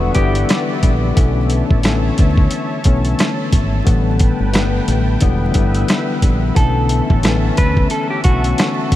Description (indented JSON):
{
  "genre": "hip hop, boom-bap hip-hop",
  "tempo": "89 BPM",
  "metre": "4/4",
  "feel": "swing 58% on 16ths",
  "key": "B minor",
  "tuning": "A4 = 437 Hz",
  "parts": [
    { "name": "clean electric guitar", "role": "melody", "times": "0.0-1.1, 6.6-9.0 s", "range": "F#4 to B4", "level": "-23 LUFS", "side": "equal", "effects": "high-pass filter, low-pass filter, ping-pong delay" },
    { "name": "tine electric piano", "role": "accompaniment", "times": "0.0-9.0 s", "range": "D3 to C#4", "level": "-20 LUFS", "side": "left 5 dB", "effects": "medium stereo tremolo, cassette tape, high-pass filter, low-pass filter" },
    { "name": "warm analog pad", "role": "sustained chords", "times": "0.0-9.0 s", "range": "C#4 to A5", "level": "-26 LUFS", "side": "right 1 dB", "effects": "chorus, high-pass filter, low-pass filter" },
    { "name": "deep dub fingered electric bass", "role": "bass", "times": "0.0-9.0 s", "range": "E1 to D2", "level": "-17 LUFS", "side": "equal", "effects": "none" },
    { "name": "dusty soul sampler-style drum kit", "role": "drums", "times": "0.1-9.0 s", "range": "hi-hat, kick drum, rim click, snare drum", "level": "-16 LUFS", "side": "equal", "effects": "none" }
  ],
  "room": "light reverb",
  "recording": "vinyl crackle",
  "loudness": "-13 LUFS",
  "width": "side -14 dB against mid",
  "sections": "0.0-9.0 A section",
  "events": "none",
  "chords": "0.0 Em7; 1.2 Bm11; 3.9 A9sus4; 5.2 Em7; 6.6 Bm11"
}